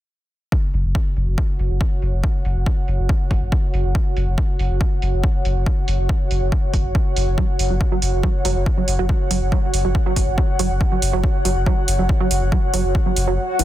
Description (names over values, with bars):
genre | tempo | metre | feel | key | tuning
driving peak-time techno | 140 BPM | 4/4 | straight | unclear | A4 = 440 Hz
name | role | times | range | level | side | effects
electronic kick drum | drums | 0.5-13.0 s | none | -19 LUFS | equal | studio reverb
warbly tape-like pad | texture | 1.3-13.6 s | F#4 to F#5 | -26 LUFS | right 1 dB | chorus, built-in reverb, sidechain pumping
saturated sub bass | bass | 0.7-13.6 s | F#1 | -20 LUFS | equal | tube saturation, sidechain pumping, low-pass filter
electronic hi-hat | drums | 0.7-13.6 s | none | -27 LUFS | right 3 dB | low-pass filter on hats, studio reverb
tight sequenced synth | riff | 7.4-13.6 s | E3 to F#3 | -25 LUFS | right 6 dB | chorus, tube saturation, sidechain pumping, digital delay
swell | sound effects | 13.5-13.6 s | none | -22 LUFS | left 9 dB | none
room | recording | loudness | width
digital ambience | dense, heavily limited modern master | -17 LUFS | side -13 dB against mid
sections
0.5-13.6 A section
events
kick drops out 13.4; swell 13.5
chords
0.5 F#5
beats
| 0.52 0.95 1.38 1.81 | 2.24 2.66 3.09 3.52 | 3.95 4.38 4.81 5.24 | 5.66 6.09 6.52 6.95 | 7.38 7.81 8.24 8.66 | 9.09 9.52 9.95 10.38 | 10.81 11.24 11.66 12.09 | 12.52 12.95 13.38